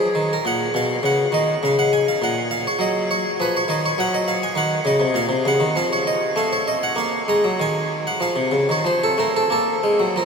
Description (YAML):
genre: classical, baroque-style suite movement for harpsichord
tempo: 100 BPM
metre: 3/4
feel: rubato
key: unclear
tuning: A4 = 440 Hz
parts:
  - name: harpsichord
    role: solo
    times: 0.0-10.2 s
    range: A#2 to Bb5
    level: -18 LUFS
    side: equal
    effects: none
room: wet huge ambient reverb, RT60 7.4 s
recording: in a vast, echoing space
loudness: -18 LUFS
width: side -5 dB against mid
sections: 0.0-10.2 A section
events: none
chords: 0.4 Bmaj9#11/A#; 1.6 N.C.; 2.2 Gb/Bb; 4.0 Ebm/Gb; 5.2 Bbm; 5.8 F; 7.0 Bb5; 7.6 N.C.; 8.2 Cmadd11; 8.8 F; 9.5 N.C.